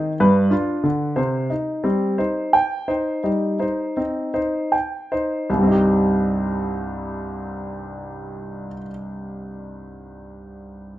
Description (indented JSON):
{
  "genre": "classical, baroque-style suite movement for grand piano",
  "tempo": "51-66 BPM (dotted quarters)",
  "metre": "12/8",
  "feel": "rubato",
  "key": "C minor",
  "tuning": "A4 = 440 Hz",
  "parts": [
    { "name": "clear grand piano", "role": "solo", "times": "0.0-11.0 s", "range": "C2 to G5", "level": "-20 LUFS", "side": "equal", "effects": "none" }
  ],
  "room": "moderate stone room reverb, RT60 1.3 s",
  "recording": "none",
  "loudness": "-19 LUFS",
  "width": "side -14 dB against mid",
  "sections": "0.0-5.5 A section; 5.5-10.0 B section",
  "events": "slowing down 0.0-5.5",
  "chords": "0.2 G7; 1.2 Cm"
}